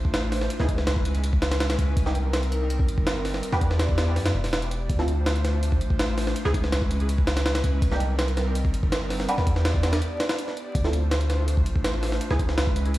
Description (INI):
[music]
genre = drum and bass, jungle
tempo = 164 BPM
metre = 4/4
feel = straight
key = unclear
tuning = A4 = 439 Hz
[part]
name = long sustained 808-style bass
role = bass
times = 0.0-13.0 s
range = E1 to F#2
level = -25 LUFS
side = equal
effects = none
[part]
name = jungle sampler-style drum kit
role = drums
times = 0.0-13.0 s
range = hi-hat, kick drum, snare drum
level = -25 LUFS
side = equal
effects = overdrive, studio reverb
[part]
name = filtered dub chord stab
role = stabs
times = 0.6-12.4 s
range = Bb3 to B4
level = -32 LUFS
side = right 1 dB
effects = phaser, ensemble chorus, cassette tape, dub echo
[part]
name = swell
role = sound effects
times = 10.1-10.7 s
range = none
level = -36 LUFS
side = right 2 dB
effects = none
[sound]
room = light reverb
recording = played on a big sound system in a bare room, stone room reverb, vinyl crackle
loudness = -22 LUFS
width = side -16 dB against mid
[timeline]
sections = 0.0-13.0 A section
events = break 10.0-10.7; swell 10.1-10.7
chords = 0.0 Dm7; 0.5 C#m7; 2.0 Cm7; 3.4 Em7; 4.9 Dm7; 6.4 C#m7; 7.8 Cm7; 9.3 Em7; 10.7 Dm7; 12.2 C#m7